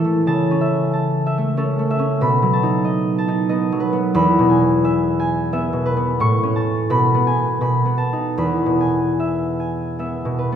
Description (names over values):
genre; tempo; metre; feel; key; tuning
classical, solo harp piece; 74-95 BPM; 3/4; rubato; E major; A4 = 440 Hz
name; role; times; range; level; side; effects
concert harp; solo; 0.0-10.6 s; E2 to C#6; -16 LUFS; equal; none
room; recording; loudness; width
wet concert hall reverb, RT60 2.0 s; heard from further back in the room; -16 LUFS; side -8 dB against mid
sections
0.0-10.6 A section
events
none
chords
0.3 A/C#; 2.2 B7; 4.2 E; 6.2 A; 6.9 G#m/B; 7.6 B7; 8.4 E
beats
| 0.28 0.94 1.58 | 2.22 2.86 3.50 | 4.16 4.84 5.51 | 6.20 6.91 7.62 | 8.39 9.20 9.98